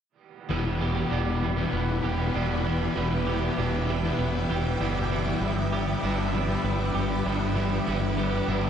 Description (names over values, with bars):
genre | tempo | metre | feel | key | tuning
rock | 98 BPM | 4/4 | straight | E minor | A4 = 442 Hz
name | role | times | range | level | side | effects
string machine, full ensemble | sustained chords | 0.5-8.7 s | B4 to D6 | -34 LUFS | right 1 dB | phaser, ensemble chorus
twelve-string electric guitar | arpeggios | 0.5-8.7 s | E3 to G4 | -34 LUFS | right 6 dB | lush chorus, analog delay
overdriven electric guitar | riff | 0.5-8.7 s | E2 to G4 | -32 LUFS | right 6 dB | reverse reverb
thick fuzz guitar | riff | 0.5-8.7 s | E2 to G3 | -29 LUFS | left 6 dB | distortion, ensemble chorus
growling fingered electric bass | bass | 0.5-8.7 s | E1 to G1 | -29 LUFS | equal | overdrive
room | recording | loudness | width
wet plate reverb, RT60 3.4 s | dreamy mix soaked in reverb, nothing above 10.4 kHz | -24 LUFS | side -8 dB against mid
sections
0.5-8.7 A section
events
none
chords
0.5 Em7; 5.4 G6